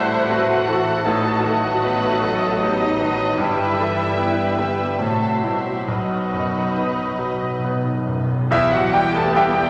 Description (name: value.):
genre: classical, romantic movement for piano and orchestra.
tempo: 67-81 BPM.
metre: 3/4.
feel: rubato.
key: E minor.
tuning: A4 = 443 Hz.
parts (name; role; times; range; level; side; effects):
clear concert grand piano; melody; 0.0-9.7 s; B1 to A5; -25 LUFS; equal; none.
warm studio violin section; melody; 0.0-9.7 s; E4 to A5; -34 LUFS; equal; none.
mellow clarinet; second line; 0.0-9.5 s; E4 to C5; -34 LUFS; equal; none.
rich studio violin section; second line; 0.0-9.7 s; B4 to A5; -32 LUFS; equal; none.
silver concert flute; second line; 0.0-9.7 s; E5 to B5; -29 LUFS; equal; none.
warm oboe; second line; 0.0-9.5 s; B4 to F#5; -32 LUFS; equal; none.
warm bassoon; accompaniment; 0.0-9.5 s; F#3 to A3; -32 LUFS; equal; none.
warm studio viola section; accompaniment; 0.0-9.7 s; B3 to C5; -31 LUFS; equal; none.
warm French horn section; sustained chords; 0.0-9.7 s; B2 to D#4; -30 LUFS; equal; none.
dark studio cello section; bass; 0.0-9.7 s; E3 to A4; -30 LUFS; equal; none.
warm studio double bass section; bass; 0.0-9.7 s; G1 to E2; -34 LUFS; equal; none.
cymbal swell, clash cymbals and concert bass drum; percussion; 5.9-9.7 s; none; -41 LUFS; equal; none.
timpani; percussion; 5.9-8.5 s; B2; -28 LUFS; equal; none.
room: wet scoring stage reverb, RT60 1.7 s.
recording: nothing above 10.3 kHz.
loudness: -20 LUFS.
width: mono.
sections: 0.0-8.5 A section; 8.5-9.7 B section.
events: timpani fill 5.9-8.5; band accent 8.5-9.4.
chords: 0.0 F#m7b5/A; 1.1 B7/A; 3.4 Em/G; 5.0 F#m7b5/A; 5.9 B; 8.5 Em.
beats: 0.30 | 1.06 1.84 2.63 | 3.40 4.19 5.01 | 5.89 6.77 7.65 | 8.53 9.37.